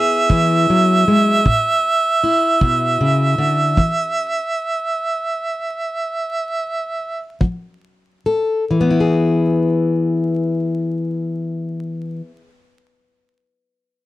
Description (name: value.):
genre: acoustic country blues, solo or duo.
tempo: 46-52 BPM (dotted quarters).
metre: 12/8.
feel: straight.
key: E major.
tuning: A4 = 440 Hz.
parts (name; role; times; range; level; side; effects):
warm harmonica; melody; 0.0-7.4 s; E5; -17 LUFS; right 3 dB; none.
fingerpicked plugged-in steel-string acoustic guitar; accompaniment; 0.0-12.5 s; A2 to A4; -17 LUFS; left 2 dB; none.
kick drum; drums; 0.3-7.6 s; none; -16 LUFS; equal; none.
room: little or no reverb.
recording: dry, close 1970s-style studio recording, vinyl crackle.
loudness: -16 LUFS.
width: side -16 dB against mid.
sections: 0.0-8.7 A section; 8.7-13.9 B section.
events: slowing down 2.2-8.7; stop 3.8-7.4.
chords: 0.0 E; 1.4 A; 3.8 N.C.; 7.4 F; 8.7 E.